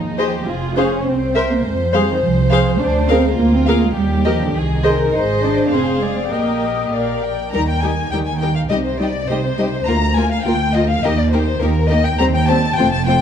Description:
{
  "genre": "quick classical-period movement for string orchestra",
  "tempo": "103 BPM",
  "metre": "2/4",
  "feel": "straight",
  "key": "Eb major",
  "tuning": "A4 = 441 Hz",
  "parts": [
    { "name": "warm chamber violin section", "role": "second line", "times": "0.0-13.2 s", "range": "Eb4 to Eb5", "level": "-24 LUFS", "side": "left 3 dB", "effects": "none" },
    { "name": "dark chamber cello section", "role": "bass", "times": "0.0-13.2 s", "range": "D2 to F4", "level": "-20 LUFS", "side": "right 3 dB", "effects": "none" },
    { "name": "dark chamber double bass section", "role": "bass", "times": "0.0-13.2 s", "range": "F1 to F2", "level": "-20 LUFS", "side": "right 2 dB", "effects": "none" },
    { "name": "warm chamber violin section", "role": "melody", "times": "0.2-13.2 s", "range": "Bb4 to Bb5", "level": "-22 LUFS", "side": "left 5 dB", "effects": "none" },
    { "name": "dark chamber viola section", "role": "accompaniment", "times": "0.2-13.2 s", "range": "G3 to Eb5", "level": "-21 LUFS", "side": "left 2 dB", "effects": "none" }
  ],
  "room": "moderate scoring stage reverb, RT60 1.6 s",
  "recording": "dark, warm production",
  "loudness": "-14 LUFS",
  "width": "side -8 dB against mid",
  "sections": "0.0-7.5 A section; 7.5-13.2 B section",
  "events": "none",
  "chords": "0.5 Fm; 1.1 C7; 1.6 Fm; 2.8 Bb7/D; 4.0 Eb; 4.5 Ab/C; 5.1 Ab; 5.7 Fm; 6.3 Eb/Bb; 6.9 Bb; 7.5 Eb; 8.7 Cm; 9.9 Bb/D; 11.0 Eb; 12.2 Cm/Eb"
}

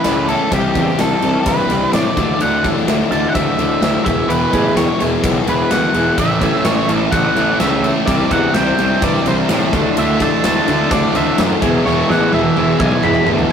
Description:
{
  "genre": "quiet-loud alternative rock",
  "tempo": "127 BPM",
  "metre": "4/4",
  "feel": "straight",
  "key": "unclear",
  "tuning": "A4 = 440 Hz",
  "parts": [
    { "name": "octave-fuzz lead guitar", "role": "melody", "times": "0.0-13.3 s", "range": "G4 to B5", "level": "-20 LUFS", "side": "right 1 dB", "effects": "distortion" },
    { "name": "fingerpicked steel-string acoustic guitar", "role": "arpeggios", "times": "0.0-13.3 s", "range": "E3 to C#5", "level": "-23 LUFS", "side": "right 2 dB", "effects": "none" },
    { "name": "overdriven semi-hollow guitar", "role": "riff", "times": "0.0-13.5 s", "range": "A2 to E4", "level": "-18 LUFS", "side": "left 4 dB", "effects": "none" },
    { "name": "big rock drum kit", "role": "drums", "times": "0.0-13.5 s", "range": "kick drum, ride cymbal, snare drum, toms", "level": "-20 LUFS", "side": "equal", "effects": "none" },
    { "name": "fuzz picked electric bass", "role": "bass", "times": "0.1-13.4 s", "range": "E1 to A2", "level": "-20 LUFS", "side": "right 1 dB", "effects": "overdrive" },
    { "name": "tight distorted guitar", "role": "riff", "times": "6.2-13.5 s", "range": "E2 to D4", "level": "-22 LUFS", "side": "right 6 dB", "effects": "distortion" }
  ],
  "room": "moderate stone room reverb, RT60 1.2 s",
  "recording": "rough rehearsal-room recording, tube saturation",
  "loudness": "-13 LUFS",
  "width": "side -7 dB against mid",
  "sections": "0.0-13.5 A section",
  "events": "lead electric guitar solo 0.0-13.5; drum fill 11.9-13.5",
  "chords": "0.0 Aadd9; 0.5 Cadd9; 2.2 Dsus2; 4.1 E; 6.2 Aadd9; 8.1 Cadd9; 9.7 Dsus2; 11.6 E"
}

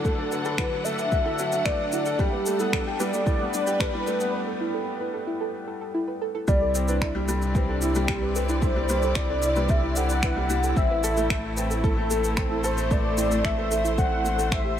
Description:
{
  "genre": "piano and strings electronica",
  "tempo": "112 BPM",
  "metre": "4/4",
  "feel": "straight",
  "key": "unclear",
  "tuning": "A4 = 442 Hz",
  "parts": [
    { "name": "warm velvety synth lead", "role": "melody", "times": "0.0-14.8 s", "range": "G4 to F#5", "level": "-28 LUFS", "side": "equal", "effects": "chorus" },
    { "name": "rich symphonic string section", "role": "sustained chords", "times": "0.0-14.8 s", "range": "A2 to F#5", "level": "-33 LUFS", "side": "left 1 dB", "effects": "sidechain pumping, low-pass filter" },
    { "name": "soft round pluck", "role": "arpeggios", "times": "0.0-14.7 s", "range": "E4 to E5", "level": "-33 LUFS", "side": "right 4 dB", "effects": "analog chorus, sidechain pumping, digital delay" },
    { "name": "bright upright piano", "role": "riff", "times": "0.0-14.8 s", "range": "F#3 to C5", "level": "-30 LUFS", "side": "left 2 dB", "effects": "digital delay" },
    { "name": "electronic kick drum", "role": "drums", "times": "0.1-14.6 s", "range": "none", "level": "-26 LUFS", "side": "equal", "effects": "none" },
    { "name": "electronic shaker and finger snaps", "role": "drums", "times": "0.1-14.6 s", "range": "none", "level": "-33 LUFS", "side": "equal", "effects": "none" },
    { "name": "round analog bass", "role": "bass", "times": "6.5-14.8 s", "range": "A1 to C2", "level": "-28 LUFS", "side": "equal", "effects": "sidechain pumping" }
  ],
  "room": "moderate huge ambient reverb, RT60 5.1 s",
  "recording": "none",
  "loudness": "-22 LUFS",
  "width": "side -10 dB against mid",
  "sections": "0.0-6.5 A section; 6.5-14.8 B section",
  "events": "build-up 0.0-6.5; filter sweep on string section 0.0-6.5; break 4.3-6.5; drop 6.5-14.8",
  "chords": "0.0 D; 2.2 Gadd9; 6.5 Cadd9; 10.8 Am"
}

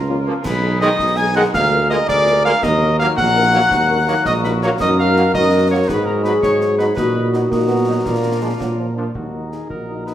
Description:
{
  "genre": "military-style march for wind band",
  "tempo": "110 BPM (dotted quarters)",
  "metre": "6/8",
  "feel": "straight",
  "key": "Eb minor",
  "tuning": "A4 = 439 Hz",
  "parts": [
    { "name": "mellow woodwind section", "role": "second line", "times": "0.0-10.1 s", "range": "Eb4 to Eb5", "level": "-26 LUFS", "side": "left 2 dB", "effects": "none" },
    { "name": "mellow tuba", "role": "bass", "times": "0.0-10.1 s", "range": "Bb1 to Bb2", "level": "-20 LUFS", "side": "right 2 dB", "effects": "none" },
    { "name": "mellow French horn section", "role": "accompaniment", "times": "0.1-10.1 s", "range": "Gb3 to Bb4", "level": "-21 LUFS", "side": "left 2 dB", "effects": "none" },
    { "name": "bright trombone section", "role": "sustained chords", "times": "0.3-9.0 s", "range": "Eb3 to Eb4", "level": "-25 LUFS", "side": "right 1 dB", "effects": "none" },
    { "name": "mellow cornet", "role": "melody", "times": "0.4-10.1 s", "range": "F4 to Ab5", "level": "-20 LUFS", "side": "equal", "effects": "none" },
    { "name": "wooden piccolo", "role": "second line", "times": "0.5-8.9 s", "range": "Bb5 to Ab6", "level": "-23 LUFS", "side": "left 2 dB", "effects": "none" },
    { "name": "concert snare drum, clash cymbals and concert bass drum", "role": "drums", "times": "0.5-10.1 s", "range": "none", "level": "-29 LUFS", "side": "equal", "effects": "none" },
    { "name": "warm euphonium", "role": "second line", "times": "7.5-10.1 s", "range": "F3 to Gb4", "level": "-25 LUFS", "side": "right 4 dB", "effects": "none" }
  ],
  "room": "wet large studio reverb, RT60 1.2 s",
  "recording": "none",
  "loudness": "-14 LUFS",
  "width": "side -11 dB against mid",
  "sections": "0.0-9.1 A section",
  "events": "none",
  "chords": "0.4 Abm/Cb; 1.5 Bb7/D; 2.6 Ebm; 4.8 Ebm/Gb; 5.9 Ab5; 7.0 Ebm/Bb; 8.1 Bb; 9.1 Ebm"
}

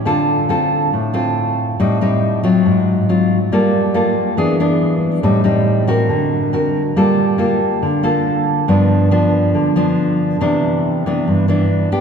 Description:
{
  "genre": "bossa nova",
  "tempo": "139 BPM",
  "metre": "4/4",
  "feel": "straight",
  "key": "unclear",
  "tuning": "A4 = 440 Hz",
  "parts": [
    { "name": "nylon-string guitar", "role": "solo", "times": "0.0-12.0 s", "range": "G2 to Bb4", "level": "-13 LUFS", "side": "equal", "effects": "none" }
  ],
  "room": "wet cathedral reverb, RT60 4.6 s",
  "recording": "recorded in a church or concert hall",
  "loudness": "-13 LUFS",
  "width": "side -6 dB against mid",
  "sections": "0.0-7.0 A section; 7.0-12.0 A section",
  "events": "none",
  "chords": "0.1 Dm7; 1.8 Am7b5; 2.7 Ab6; 3.5 Gm9; 4.4 E7; 5.2 Am7b5; 6.1 Daug7; 7.0 Gm9; 8.7 G7; 10.4 Cmaj9"
}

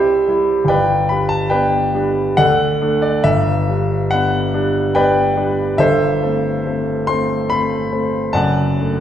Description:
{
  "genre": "classical, romantic character piece for solo piano",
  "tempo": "70 BPM",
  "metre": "3/4",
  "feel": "rubato",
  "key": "G major",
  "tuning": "A4 = 443 Hz",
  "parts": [
    { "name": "warm grand piano", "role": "solo", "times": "0.0-9.0 s", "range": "F#1 to C6", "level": "-14 LUFS", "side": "equal", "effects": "none" }
  ],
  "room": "wet large studio reverb, RT60 1.3 s",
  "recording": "heard from further back in the room",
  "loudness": "-14 LUFS",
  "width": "side -10 dB against mid",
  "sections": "0.0-9.0 A section",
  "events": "none",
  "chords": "0.0 C; 0.7 G; 2.4 D; 3.3 G; 5.8 Am7/G; 8.3 D/F#"
}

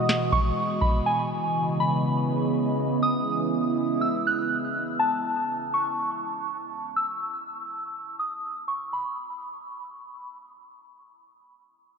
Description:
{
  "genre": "hip hop, atmospheric cloud-rap",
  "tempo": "122 BPM",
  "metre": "4/4",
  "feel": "half-time",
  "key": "unclear",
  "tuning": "A4 = 440 Hz",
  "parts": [
    { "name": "soft synth bell", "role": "melody", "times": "0.0-10.4 s", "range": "G#5 to F#6", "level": "-27 LUFS", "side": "equal", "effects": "chorus, phaser, tape echo" },
    { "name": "warbly tape-like pad", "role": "sustained chords", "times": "0.0-5.0 s", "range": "B2 to D#5", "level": "-26 LUFS", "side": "right 1 dB", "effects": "chorus, built-in reverb, phaser, sidechain pumping" },
    { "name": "booming analog drum machine", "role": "drums", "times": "0.1-1.0 s", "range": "kick drum, snare drum", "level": "-25 LUFS", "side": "equal", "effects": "none" }
  ],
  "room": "wet huge ambient reverb, RT60 7.2 s",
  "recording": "dreamy mix soaked in reverb, low-pass filter",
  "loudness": "-24 LUFS",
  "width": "side -5 dB against mid",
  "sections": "0.0-8.9 A section; 8.9-12.0 B section",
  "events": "filter sweep 0.0-8.9",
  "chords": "0.0 Emaj7; 1.1 C#m9; 5.0 N.C."
}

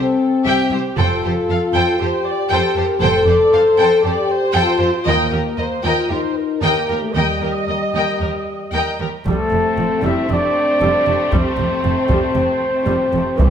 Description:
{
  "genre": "cinematic, epic orchestral film score",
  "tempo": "116 BPM",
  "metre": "4/4",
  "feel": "straight",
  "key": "F major",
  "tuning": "A4 = 440 Hz",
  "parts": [
    { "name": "rich symphonic violin section", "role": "melody", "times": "0.0-13.5 s", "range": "C4 to G5", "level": "-24 LUFS", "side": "left 1 dB", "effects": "none" },
    { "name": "warm studio violin section", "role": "second line", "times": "0.0-13.5 s", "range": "G3 to E5", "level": "-25 LUFS", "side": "left 2 dB", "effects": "none" },
    { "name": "dark symphonic viola section", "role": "accompaniment", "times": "0.0-13.5 s", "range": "C3 to Eb5", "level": "-25 LUFS", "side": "right 2 dB", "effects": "none" },
    { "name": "dark French horn section", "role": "sustained chords", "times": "0.0-13.5 s", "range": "G3 to A4", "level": "-19 LUFS", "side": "left 3 dB", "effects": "none" },
    { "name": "warm symphonic cello section", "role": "bass", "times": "0.0-13.5 s", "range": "C2 to F2", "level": "-24 LUFS", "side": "right 3 dB", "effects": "none" },
    { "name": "warm studio double bass section", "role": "bass", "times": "1.0-13.5 s", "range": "F1 to Eb2", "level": "-24 LUFS", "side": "right 4 dB", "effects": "none" },
    { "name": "mellow trumpet section", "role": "stabs", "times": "9.3-13.5 s", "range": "G4 to E5", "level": "-18 LUFS", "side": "equal", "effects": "none" },
    { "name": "taiko ensemble", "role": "drums", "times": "9.3-13.5 s", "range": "none", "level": "-19 LUFS", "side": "equal", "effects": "none" },
    { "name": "timpani", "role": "percussion", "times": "13.4-13.5 s", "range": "C3", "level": "-22 LUFS", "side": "left 1 dB", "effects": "none" }
  ],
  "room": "wet recital hall reverb, RT60 1.4 s",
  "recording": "none",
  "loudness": "-15 LUFS",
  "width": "side -8 dB against mid",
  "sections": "0.0-9.3 A section; 9.3-13.5 A section",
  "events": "none",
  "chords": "0.0 C; 1.0 Fadd9; 5.1 Eb; 9.3 Fadd9"
}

